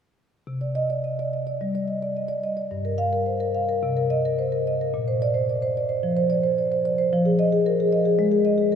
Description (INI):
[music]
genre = classical, contemporary piece for solo marimba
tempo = 109 BPM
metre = 4/4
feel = rubato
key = C minor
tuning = A4 = 441 Hz
[part]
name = marimba with soft mallets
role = solo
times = 0.5-8.8 s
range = G2 to F5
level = -21 LUFS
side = equal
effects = none
[sound]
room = wet cathedral reverb, RT60 7.1 s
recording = none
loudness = -21 LUFS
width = side -7 dB against mid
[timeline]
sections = 0.5-8.8 A section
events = none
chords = 0.5 Cmadd9; 2.7 Gm7; 3.8 Cm7; 4.9 Bbadd9; 7.1 Fm7